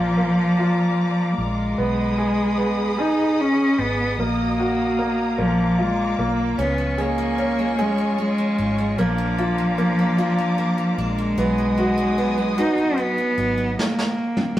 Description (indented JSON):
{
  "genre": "six-eight pop ballad",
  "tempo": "50 BPM (dotted quarters)",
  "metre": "6/8",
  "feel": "straight",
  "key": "unclear",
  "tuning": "A4 = 440 Hz",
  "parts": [
    { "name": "warm cello", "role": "melody", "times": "0.0-14.6 s", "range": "F3 to Eb4", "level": "-21 LUFS", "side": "equal", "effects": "none" },
    { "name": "clear grand piano", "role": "accompaniment", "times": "0.0-13.8 s", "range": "Bb3 to Ab4", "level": "-26 LUFS", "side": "equal", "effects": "none" },
    { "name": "dark studio string section", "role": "sustained chords", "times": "0.0-13.8 s", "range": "F4 to Eb6", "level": "-29 LUFS", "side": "left 1 dB", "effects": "none" },
    { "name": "vintage muted fingered electric bass", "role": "bass", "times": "0.0-13.7 s", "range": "Ab1 to Db2", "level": "-29 LUFS", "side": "equal", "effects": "none" },
    { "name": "picked steel-string acoustic guitar", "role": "arpeggios", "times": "6.6-13.9 s", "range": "F3 to Eb4", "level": "-31 LUFS", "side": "right 2 dB", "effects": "none" },
    { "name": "vintage brush drum kit", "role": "drums", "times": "13.8-14.6 s", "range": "snare drum, toms", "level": "-22 LUFS", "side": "equal", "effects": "none" }
  ],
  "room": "wet stone room reverb, RT60 1.0 s",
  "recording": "rough rehearsal-room recording",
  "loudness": "-18 LUFS",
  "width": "side -13 dB against mid",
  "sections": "0.0-14.6 A section",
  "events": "drum fill 13.8-14.6",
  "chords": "0.0 Bb; 1.8 Abm/Cb; 4.2 Ebm/Bb; 5.4 Bb; 6.6 Db; 9.0 Bb; 11.4 Abm7/Cb; 13.8 N.C.",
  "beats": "0.57 | 1.78 2.98 | 4.18 5.38 | 6.58 7.79 | 8.98 10.18 | 11.38 12.57 | 13.77"
}